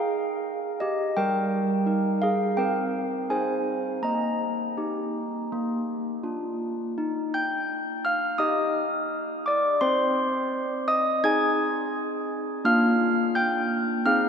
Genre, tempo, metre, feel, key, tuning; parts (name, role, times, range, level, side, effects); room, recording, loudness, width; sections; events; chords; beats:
classical, tune for handbells; 84 BPM; 4/4; straight; Eb major; A4 = 440 Hz
handbells; solo; 0.0-14.3 s; G3 to Ab6; -23 LUFS; equal
wet cathedral reverb, RT60 5.5 s; -23 LUFS; side -7 dB against mid
0.0-7.0 A section; 7.0-14.3 B section
0.0 Eb; 1.1 Eb/G; 2.6 Ab/C; 4.0 Eb/Bb; 5.5 Bb; 7.0 Eb; 9.8 Ab/C; 12.6 Bb
0.44 | 1.15 1.85 2.56 3.28 | 4.02 4.77 5.50 6.24 | 6.97 7.68 8.40 9.10 | 9.80 10.50 11.23 11.93 | 12.63 13.34 14.04